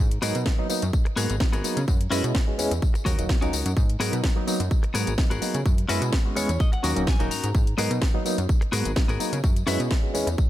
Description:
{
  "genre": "filtered disco house",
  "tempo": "127 BPM",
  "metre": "4/4",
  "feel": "swing 53% on 16ths",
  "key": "G# minor",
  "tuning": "A4 = 441 Hz",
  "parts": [
    { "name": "plucky analog bass", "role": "bass", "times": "0.0-10.4 s", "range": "D#1 to C#3", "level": "-27 LUFS", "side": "equal", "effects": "sidechain pumping" },
    { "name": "house drum kit", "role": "drums", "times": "0.1-10.5 s", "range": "hi-hat, snare drum, tambourine", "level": "-31 LUFS", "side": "left 2 dB", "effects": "none" },
    { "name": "barky reed electric piano", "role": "accompaniment", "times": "0.2-10.3 s", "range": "F#3 to A#4", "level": "-29 LUFS", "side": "right 1 dB", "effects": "overdrive, fast tremolo, phaser, sidechain pumping" },
    { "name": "direct-recorded clean electric guitar", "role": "riff", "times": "0.2-9.9 s", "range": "B3 to A#5", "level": "-31 LUFS", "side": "left 3 dB", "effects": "sidechain pumping" },
    { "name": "electronic kick drum", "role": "drums", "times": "0.5-10.5 s", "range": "none", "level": "-22 LUFS", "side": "equal", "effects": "none" }
  ],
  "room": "little or no reverb",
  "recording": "none",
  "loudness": "-21 LUFS",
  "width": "side -14 dB against mid",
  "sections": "0.0-10.5 A section",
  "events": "clean electric guitar fill 6.1-7.5",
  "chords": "0.0 G#m9; 1.9 F#7sus4; 2.8 D#m7; 3.8 G#m9; 5.7 F#7sus4; 6.6 D#m7; 7.5 G#m9; 9.4 F#7sus4"
}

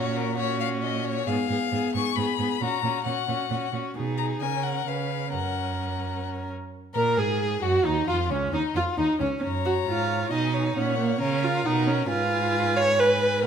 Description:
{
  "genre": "quick classical-period movement for string quartet",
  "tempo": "134 BPM",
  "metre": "3/4",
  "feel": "straight",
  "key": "F# major",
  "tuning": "A4 = 441 Hz",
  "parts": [
    { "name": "rich violin", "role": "melody", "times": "0.0-13.5 s", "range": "C#4 to C#6", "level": "-31 LUFS", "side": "left 12 dB", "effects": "none" },
    { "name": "warm violin", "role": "second line", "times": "0.0-13.5 s", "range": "C#4 to D#5", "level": "-31 LUFS", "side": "left 5 dB", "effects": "none" },
    { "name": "rich viola", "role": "accompaniment", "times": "0.0-13.5 s", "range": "A#3 to C#5", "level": "-26 LUFS", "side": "right 2 dB", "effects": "none" },
    { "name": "rich cello", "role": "bass", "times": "0.0-13.5 s", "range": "C#2 to C#3", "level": "-30 LUFS", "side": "right 6 dB", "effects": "none" }
  ],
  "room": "moderate recital hall reverb, RT60 1.4 s",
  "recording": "none",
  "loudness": "-23 LUFS",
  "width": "side -8 dB against mid",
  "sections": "0.0-6.7 A section; 6.7-13.5 A section",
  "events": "none",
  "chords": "0.0 F#/A#; 1.3 Fdim/Ab; 2.6 F#/A#; 4.0 G#m/B; 4.4 F#/C#; 5.3 F#; 8.1 C#; 9.4 F#; 10.8 F#/A#; 12.1 Fdim/Ab"
}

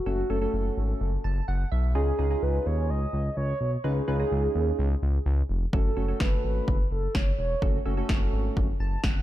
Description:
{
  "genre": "synth-pop",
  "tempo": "127 BPM",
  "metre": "4/4",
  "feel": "straight",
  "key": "F# dorian",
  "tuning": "A4 = 441 Hz",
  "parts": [
    { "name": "mellow horn-like synth lead", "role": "melody", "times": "0.0-7.8 s", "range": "F#4 to D#5", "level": "-32 LUFS", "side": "right 1 dB", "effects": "chorus, ping-pong delay" },
    { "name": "soft electric-piano-like synth keys", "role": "accompaniment", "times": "0.1-9.2 s", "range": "A3 to A5", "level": "-33 LUFS", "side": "right 2 dB", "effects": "chorus" },
    { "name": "smooth synth bass", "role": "bass", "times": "0.1-9.2 s", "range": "E1 to D#2", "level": "-27 LUFS", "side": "equal", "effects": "none" },
    { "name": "punchy analog drum machine", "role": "drums", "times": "5.7-9.1 s", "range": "kick drum, snare drum", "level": "-26 LUFS", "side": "equal", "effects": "none" }
  ],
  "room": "little or no reverb",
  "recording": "dark, warm production",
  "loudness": "-24 LUFS",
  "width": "side -14 dB against mid",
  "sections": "0.0-9.2 A section",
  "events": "synth keys fill 1.0-2.0, 8.6-9.2",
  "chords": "0.0 F#m; 2.0 C#add9; 5.7 F#m"
}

